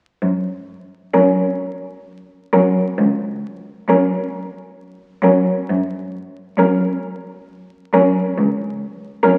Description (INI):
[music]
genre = classical, lyrical piece for cello ensemble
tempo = 44 BPM (dotted quarters)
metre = 12/8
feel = rubato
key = F# major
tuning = A4 = 441 Hz
[part]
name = rich cello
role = bass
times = 0.2-9.4 s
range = C#2 to F#2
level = -22 LUFS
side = equal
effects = none
[part]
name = warm cello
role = melody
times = 1.1-9.4 s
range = A#4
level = -22 LUFS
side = equal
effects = none
[part]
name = rich cello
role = second line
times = 1.1-9.4 s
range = C#4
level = -21 LUFS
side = equal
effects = none
[part]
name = rich cello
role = accompaniment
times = 1.1-9.4 s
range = F#3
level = -22 LUFS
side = equal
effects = none
[sound]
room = wet recital hall reverb, RT60 1.8 s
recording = very old 78 rpm record, vinyl crackle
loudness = -18 LUFS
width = mono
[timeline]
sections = 0.2-9.4 A section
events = none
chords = 0.2 F#